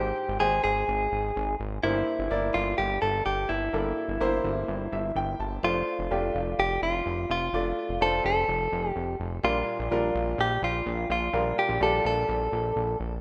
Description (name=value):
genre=piano-driven pop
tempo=126 BPM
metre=4/4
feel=straight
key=F major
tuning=A4 = 438 Hz
part: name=direct-recorded clean electric guitar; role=melody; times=0.0-13.0 s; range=E4 to A4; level=-30 LUFS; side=equal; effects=spring reverb
part: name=clear upright piano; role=accompaniment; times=0.0-13.2 s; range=G2 to A5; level=-33 LUFS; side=equal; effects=none
part: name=fat analog bass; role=bass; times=0.0-13.2 s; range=F1 to Bb1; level=-34 LUFS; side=equal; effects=none
room=light reverb, studio ambience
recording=rough home demo mix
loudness=-27 LUFS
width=mono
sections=0.0-5.6 A section; 5.6-13.2 A section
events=upright piano fill 4.7-5.6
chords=0.0 Abmaj7; 1.8 C7/G; 5.6 F6; 9.4 Bb6